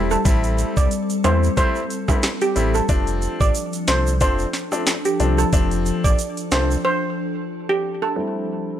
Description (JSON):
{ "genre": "dancehall", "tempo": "91 BPM", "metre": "4/4", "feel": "swing 56% on 16ths", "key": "unclear", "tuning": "A4 = 440 Hz", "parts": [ { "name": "clear grand piano", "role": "accompaniment", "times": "0.0-8.8 s", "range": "F3 to E4", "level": "-25 LUFS", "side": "left 3 dB", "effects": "low-pass filter" }, { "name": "glassy FM pad", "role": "sustained chords", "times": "0.0-8.8 s", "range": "F3 to A4", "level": "-26 LUFS", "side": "left 2 dB", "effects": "ensemble chorus, built-in reverb, sidechain pumping, low-pass filter" }, { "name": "sub bass with octave", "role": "bass", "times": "0.0-6.8 s", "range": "E1 to E2", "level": "-21 LUFS", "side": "equal", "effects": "none" }, { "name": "steel pan", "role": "melody", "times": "0.1-8.1 s", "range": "G4 to D5", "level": "-24 LUFS", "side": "right 2 dB", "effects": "ping-pong delay" }, { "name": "egg shaker and timbales", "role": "percussion", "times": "0.1-6.8 s", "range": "none", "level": "-30 LUFS", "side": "right 7 dB", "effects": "none" }, { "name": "afro-pop drum kit", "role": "drums", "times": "0.3-6.7 s", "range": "hi-hat, kick drum, rim click, snare drum", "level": "-20 LUFS", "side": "equal", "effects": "vintage 12-bit sampler grit" } ], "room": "studio reverb", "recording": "none", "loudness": "-18 LUFS", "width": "side -10 dB against mid", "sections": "0.0-8.2 A section", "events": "break 6.8-8.2", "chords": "0.0 Am7; 2.9 F6; 8.2 Am7", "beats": "| 0.25 0.91 1.57 2.23 | 2.89 3.55 4.21 4.87 | 5.53 6.19 6.85 7.51 | 8.17" }